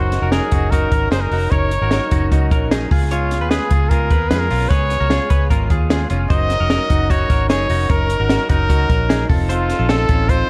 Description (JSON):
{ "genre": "jangly indie pop", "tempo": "150 BPM", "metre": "4/4", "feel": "straight", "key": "unclear", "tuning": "A4 = 440 Hz", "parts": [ { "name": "bright trumpet", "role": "melody", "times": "0.0-10.5 s", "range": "F4 to Eb5", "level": "-24 LUFS", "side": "equal", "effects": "tape echo" }, { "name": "electric guitar through a small old amp", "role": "accompaniment", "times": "0.0-10.5 s", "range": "Db3 to Bb4", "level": "-29 LUFS", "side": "equal", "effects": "spring reverb" }, { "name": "direct-recorded clean electric guitar", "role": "arpeggios", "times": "0.0-10.5 s", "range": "C4 to Db5", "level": "-28 LUFS", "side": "equal", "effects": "analog chorus" }, { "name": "vintage muted fingered electric bass", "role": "bass", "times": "0.0-10.4 s", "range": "F1 to F2", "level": "-22 LUFS", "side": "equal", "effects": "none" }, { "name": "compact cocktail drum kit", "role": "drums", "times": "0.1-10.4 s", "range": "hi-hat, kick drum, snare drum", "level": "-20 LUFS", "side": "equal", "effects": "none" } ], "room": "studio ambience", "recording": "dark, warm production", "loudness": "-17 LUFS", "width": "mono", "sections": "0.0-10.5 A section", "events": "none", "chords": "0.0 Gb6; 2.9 Db7; 6.3 Gb6; 9.3 F7" }